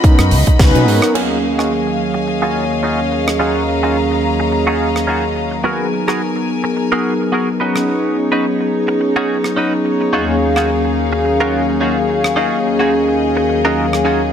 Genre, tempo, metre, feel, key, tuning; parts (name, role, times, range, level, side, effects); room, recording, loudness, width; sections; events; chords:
nu-disco, nu disco; 107 BPM; 4/4; swing 55% on 16ths; Eb minor; A4 = 440 Hz
wide unison lead; melody; 0.0-0.8 s; Eb4; -23 LUFS; equal; cassette tape, tape echo
warm analog pad; accompaniment; 0.0-14.3 s; Eb2 to F5; -16 LUFS; equal; chorus, dub echo
clear studio string section; sustained chords; 0.0-14.3 s; Gb3 to Cb6; -22 LUFS; left 3 dB; sidechain pumping
electronic kick drum; drums; 0.0-0.7 s; -10 LUFS; equal; small room reverb
tight funk drum kit; drums; 0.0-14.0 s; crash cymbal, hi-hat, rim click, snare drum; -22 LUFS; right 2 dB; small room reverb
fingered electric bass with an envelope filter; bass; 0.2-1.0 s; Db2 to Cb3; -13 LUFS; equal; tube saturation
direct-recorded clean electric guitar; riff; 1.1-14.2 s; Cb4 to Cb5; -21 LUFS; right 2 dB; analog chorus, vintage 12-bit sampler grit, low-pass filter, dub echo
moderate lush hall reverb, RT60 2.3 s; -13 LUFS; side -8 dB against mid
0.0-1.2 A section; 1.2-14.3 B section
band accent 0.6; filter sweep on clean electric guitar 1.2-14.3
0.0 Db9sus4; 1.2 Ebm11; 5.6 Abm9; 7.6 Db9sus4; 10.1 Ebm11